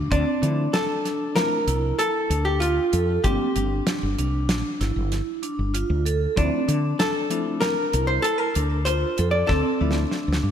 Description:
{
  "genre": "progressive instrumental, band music in an uneven meter",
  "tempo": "96 BPM",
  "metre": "5/4",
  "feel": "straight",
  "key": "D minor",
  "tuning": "A4 = 440 Hz",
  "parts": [
    { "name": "vibraphone with medium hard mallets", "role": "arpeggios", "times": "0.0-10.5 s", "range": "C4 to A4", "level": "-27 LUFS", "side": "right 3 dB", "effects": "none" },
    { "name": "woody fretless electric bass", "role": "bass", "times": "0.0-10.5 s", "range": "G1 to D3", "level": "-24 LUFS", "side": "equal", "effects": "none" },
    { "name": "archtop guitar, miked and amplified", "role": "melody", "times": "0.1-10.5 s", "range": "D4 to D5", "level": "-24 LUFS", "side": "left 2 dB", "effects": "ping-pong delay" },
    { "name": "damped 70s drum kit", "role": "drums", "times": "0.1-10.5 s", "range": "hi-hat, kick drum, snare drum", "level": "-28 LUFS", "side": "right 1 dB", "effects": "none" },
    { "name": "bell-like tine electric piano", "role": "accompaniment", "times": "0.4-10.0 s", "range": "F3 to E4", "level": "-32 LUFS", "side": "left 4 dB", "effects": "none" }
  ],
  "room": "moderate concert hall reverb, RT60 2.5 s",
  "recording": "big arena sound",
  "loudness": "-20 LUFS",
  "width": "side -9 dB against mid",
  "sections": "0.1-10.5 A section",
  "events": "drum fill 9.5-10.5",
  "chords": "0.1 Dm7; 3.2 G7(no3); 6.4 Dm7; 9.5 Dmadd9"
}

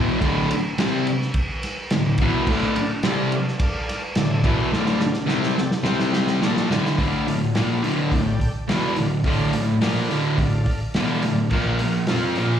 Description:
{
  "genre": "garage rock duo or trio",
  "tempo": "106 BPM",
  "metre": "4/4",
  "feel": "straight",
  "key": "D minor",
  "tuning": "A4 = 440 Hz",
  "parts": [
    { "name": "thick fuzz guitar", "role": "riff", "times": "0.0-12.6 s", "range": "D2 to F4", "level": "-20 LUFS", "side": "equal", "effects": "distortion, slapback echo" },
    { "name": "vintage drum kit", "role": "drums", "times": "0.2-12.5 s", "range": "crash cymbal, hi-hat, kick drum, ride cymbal, snare drum", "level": "-25 LUFS", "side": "equal", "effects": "none" },
    { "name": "combo organ", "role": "sustained chords", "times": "2.5-12.5 s", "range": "F4 to C6", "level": "-32 LUFS", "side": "equal", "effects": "none" }
  ],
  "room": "light reverb, small room reverb",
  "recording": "live gig heard through the venue's PA, club reverb",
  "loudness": "-19 LUFS",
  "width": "side -9 dB against mid",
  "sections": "0.0-7.0 A section; 7.0-12.6 B section",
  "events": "drum fill 4.7-7.0; transistor combo organ fill 5.9-7.0",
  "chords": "0.0 Dm; 5.9 C5; 6.4 Dm; 11.5 Bb5"
}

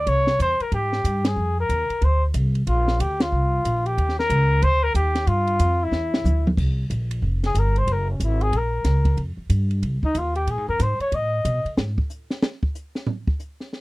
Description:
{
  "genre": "jazz, small-group swing and bop",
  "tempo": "184 BPM",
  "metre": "4/4",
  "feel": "swing 63% on 8ths",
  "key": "F dorian, C minor from 6.6 s",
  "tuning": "A4 = 441 Hz",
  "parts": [
    { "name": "dark trumpet", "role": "melody", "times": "0.0-11.7 s", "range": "C#4 to Eb5", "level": "-23 LUFS", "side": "left 1 dB", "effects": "none" },
    { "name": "upright bass", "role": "bass", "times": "0.0-12.0 s", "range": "F1 to B2", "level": "-21 LUFS", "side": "equal", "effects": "none" },
    { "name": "compact cocktail drum kit", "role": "drums", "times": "0.1-13.8 s", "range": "crash cymbal, hi-hat, kick drum, ride cymbal, snare drum, toms", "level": "-25 LUFS", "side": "equal", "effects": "none" }
  ],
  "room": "little or no reverb",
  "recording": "dry, close 1970s-style studio recording",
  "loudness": "-20 LUFS",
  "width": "side -20 dB against mid",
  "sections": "0.0-6.6 A section; 6.6-13.8 B section",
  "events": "band accent 1.2, 3.2; drum fill 5.9-6.6; trumpet solo 6.6-13.8; drum solo 11.8-13.8",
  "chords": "0.1 C; 1.4 F5; 2.7 Bbadd9; 4.0 Ebmaj7; 5.3 Fsus2; 5.9 Dsus2; 6.6 C7sus4; 7.9 F#add9; 9.2 Fsus2; 10.5 Bb5; 11.1 Asus2; 11.8 N.C."
}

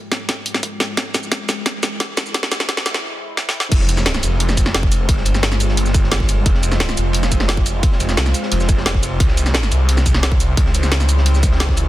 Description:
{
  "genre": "dark technical drum and bass",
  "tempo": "175 BPM",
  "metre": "4/4",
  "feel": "straight",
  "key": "F harmonic minor",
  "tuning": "A4 = 438 Hz",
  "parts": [
    { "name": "deep dark ambient pad", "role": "sustained chords", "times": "0.0-11.9 s", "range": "G3 to C5", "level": "-27 LUFS", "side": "equal", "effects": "chorus, built-in reverb, sidechain pumping" },
    { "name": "drum and bass drum kit", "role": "drums", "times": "0.1-11.8 s", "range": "crash cymbal, hi-hat, shaker, snare drum", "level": "-20 LUFS", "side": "equal", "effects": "overdrive" },
    { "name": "electronic kick drum", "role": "drums", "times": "0.3-11.8 s", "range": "none", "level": "-17 LUFS", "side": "equal", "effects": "overdrive, high-pass filter on kick, high-pass filter on room" },
    { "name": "snarling distorted saw bass", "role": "bass", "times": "3.7-11.9 s", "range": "F1 to Db2", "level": "-17 LUFS", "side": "equal", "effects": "distortion, overdrive" },
    { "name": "crunchy breakbeat drum kit", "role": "drums", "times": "3.7-11.9 s", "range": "ride cymbal, snare drum", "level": "-28 LUFS", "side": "equal", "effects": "high-pass filter on cymbals, high-pass filter on snare, high-pass filter on room" }
  ],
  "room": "little or no reverb",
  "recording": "dense, heavily limited modern master, high-pass filter",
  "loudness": "-15 LUFS",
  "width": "side -15 dB against mid",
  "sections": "0.0-3.7 A section; 3.7-11.9 B section",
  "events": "build-up 0.0-3.7; drum fill 0.0-3.0, 3.4-3.7; filter sweep on ambient pad 0.0-3.7; break 3.0-3.7; drop 3.7-11.9",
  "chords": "0.0 Fm; 9.2 C"
}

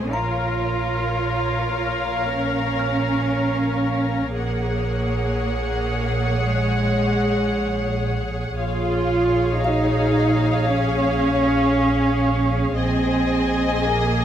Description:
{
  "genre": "cinematic, suspense film score",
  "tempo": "57 BPM",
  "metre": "4/4",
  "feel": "straight",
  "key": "Bb minor",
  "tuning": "A4 = 440 Hz",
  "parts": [
    { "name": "muted studio violin section", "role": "melody", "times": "0.0-14.2 s", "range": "F5 to Ab5", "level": "-29 LUFS", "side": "left 3 dB", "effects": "none" },
    { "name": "muted symphonic violin section", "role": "second line", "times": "0.0-14.2 s", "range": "Db5 to Eb5", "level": "-29 LUFS", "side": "left 1 dB", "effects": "none" },
    { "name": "muted symphonic viola section", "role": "accompaniment", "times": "0.0-14.2 s", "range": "Ab4 to Bb4", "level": "-28 LUFS", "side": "left 3 dB", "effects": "none" },
    { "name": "muted chamber cello section", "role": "bass", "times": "0.0-14.2 s", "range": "Ab3 to F4", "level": "-23 LUFS", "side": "right 2 dB", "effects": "none" },
    { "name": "muted studio double bass section", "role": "bass", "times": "0.0-14.2 s", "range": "Bb1", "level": "-24 LUFS", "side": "right 2 dB", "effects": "none" },
    { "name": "music box", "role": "texture", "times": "0.0-12.8 s", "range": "Gb4 to F6", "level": "-31 LUFS", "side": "left 2 dB", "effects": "none" }
  ],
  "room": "moderate scoring stage reverb, RT60 1.7 s",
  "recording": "none",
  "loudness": "-19 LUFS",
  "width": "side -10 dB against mid",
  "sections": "0.0-14.2 A section",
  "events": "none",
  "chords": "0.1 Bbm; 4.4 Gbadd9/Bb; 8.6 Db/Bb; 12.8 Ab/Bb"
}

